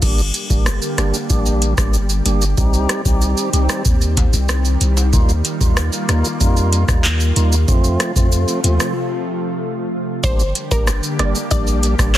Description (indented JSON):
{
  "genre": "dancehall",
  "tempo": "94 BPM",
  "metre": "4/4",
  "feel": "straight",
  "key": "G minor",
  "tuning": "A4 = 442 Hz",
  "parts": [
    { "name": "tonewheel organ", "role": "accompaniment", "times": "0.0-12.2 s", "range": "F3 to G4", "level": "-23 LUFS", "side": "right 1 dB", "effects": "slow rotary speaker" },
    { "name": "lush unison pad", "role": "sustained chords", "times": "0.0-12.2 s", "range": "C3 to G4", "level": "-24 LUFS", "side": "equal", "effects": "chorus, phaser, sidechain pumping" },
    { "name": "punchy sub bass", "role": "bass", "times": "0.0-12.2 s", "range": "G1 to F2", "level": "-17 LUFS", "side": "equal", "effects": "none" },
    { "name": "booming analog drum machine", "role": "drums", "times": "0.0-12.2 s", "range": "crash cymbal, handclaps, hi-hat, kick drum, rim click, shaker", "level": "-18 LUFS", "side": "equal", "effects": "soft clipping on snare" },
    { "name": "egg shaker and timbales", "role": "percussion", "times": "0.0-12.2 s", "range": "none", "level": "-32 LUFS", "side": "left 6 dB", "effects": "none" },
    { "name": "analog pluck", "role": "melody", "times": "10.2-12.2 s", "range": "Bb4 to D5", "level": "-24 LUFS", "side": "equal", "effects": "chorus, tape echo" }
  ],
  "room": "digital ambience",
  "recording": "dense, heavily limited modern master",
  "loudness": "-14 LUFS",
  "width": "side -13 dB against mid",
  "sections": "0.0-10.2 A section; 10.2-12.2 B section",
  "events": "break 9.0-10.2",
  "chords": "0.0 Gm; 2.6 Cm; 5.1 Ebadd9; 7.7 F; 10.2 Gm"
}